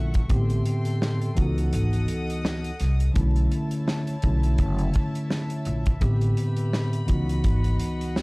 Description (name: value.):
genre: hip hop, boom-bap hip-hop.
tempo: 84 BPM.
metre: 4/4.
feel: swing 57% on 16ths.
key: unclear.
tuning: A4 = 440 Hz.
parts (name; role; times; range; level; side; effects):
mellow tine electric piano; accompaniment; 0.0-8.2 s; C#2 to G4; -26 LUFS; equal; medium stereo tremolo, cassette tape.
warm studio string section; sustained chords; 0.0-8.2 s; E4 to D#6; -37 LUFS; left 1 dB; none.
upright bass; bass; 0.0-7.7 s; F#1 to C#2; -24 LUFS; equal; none.
warm soul drum kit; drums; 0.1-8.2 s; hi-hat, kick drum, snare drum; -26 LUFS; equal; none.
room: little or no reverb.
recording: dry, gritty hardware recording, vinyl crackle, faint mains hum.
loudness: -22 LUFS.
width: side -28 dB against mid.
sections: 0.0-8.2 A section.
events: kick muted 1.7-3.2.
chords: 0.3 Am11; 1.4 C#m11; 3.2 Bm11; 6.0 Am11; 7.1 C#m11.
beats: | 0.30 1.02 1.73 2.44 | 3.16 3.87 4.59 5.30 | 6.02 6.73 7.45 8.16.